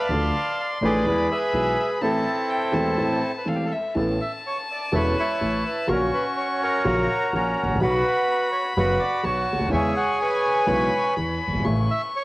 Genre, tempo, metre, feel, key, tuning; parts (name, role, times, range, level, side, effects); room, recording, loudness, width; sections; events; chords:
tango; 125 BPM; 4/4; rubato; A minor, A major from 4.0 s; A4 = 440 Hz
bandoneon; melody; 0.0-12.2 s; C4 to A5; -23 LUFS; right 1 dB; tape echo
clear violin; second line; 0.0-12.2 s; E5 to C#6; -30 LUFS; left 2 dB; cassette tape, tape echo
dark upright piano; accompaniment; 0.1-11.9 s; E1 to A4; -25 LUFS; equal; cassette tape
upright bass; bass; 0.1-11.9 s; E1 to E2; -29 LUFS; equal; tube saturation
wet spring reverb, RT60 1.2 s, small room ambience; home recording on cassette, vinyl crackle; -20 LUFS; side -20 dB against mid
0.0-4.0 A section; 4.0-12.2 B section
0.1 Dm; 1.1 E; 2.0 Am; 4.0 Aadd9; 5.9 F#/A#; 7.8 Bsus2; 9.7 E6; 11.7 A